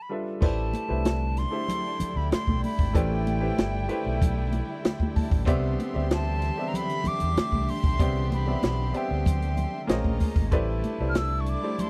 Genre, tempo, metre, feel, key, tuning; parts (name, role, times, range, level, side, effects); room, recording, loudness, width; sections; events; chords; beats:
lush 1970s-style soul; 95 BPM; 4/4; straight; A4 = 439 Hz
silver concert flute; melody; 0.0-11.9 s; G5 to F6; -35 LUFS; equal
clear baby grand piano; accompaniment; 0.1-11.9 s; G3 to A5; -34 LUFS; equal
warm symphonic string section; sustained chords; 0.4-11.9 s; D3 to E4; -40 LUFS; equal
overdriven fingered electric bass; bass; 0.4-11.5 s; G1 to E2; -30 LUFS; equal
compact cocktail drum kit; drums; 0.4-11.9 s; crash cymbal, hi-hat, kick drum, snare drum; -27 LUFS; equal
congas; percussion; 0.7-11.9 s; -35 LUFS; equal
warm studio violin section; second line; 1.7-11.9 s; E4 to C6; -41 LUFS; equal
little or no reverb; dry, close 1970s-style studio recording; -26 LUFS; mono
0.4-11.9 A section
break 0.0-0.4; grand piano fill 4.5-5.5
0.4 Am11; 5.5 Cmaj9; 9.9 Bbm11; 10.5 Am11
| 0.42 1.05 1.68 2.31 | 2.95 3.58 4.21 4.84 | 5.47 6.10 6.73 7.37 | 8.00 8.63 9.26 9.89 | 10.52 11.15 11.78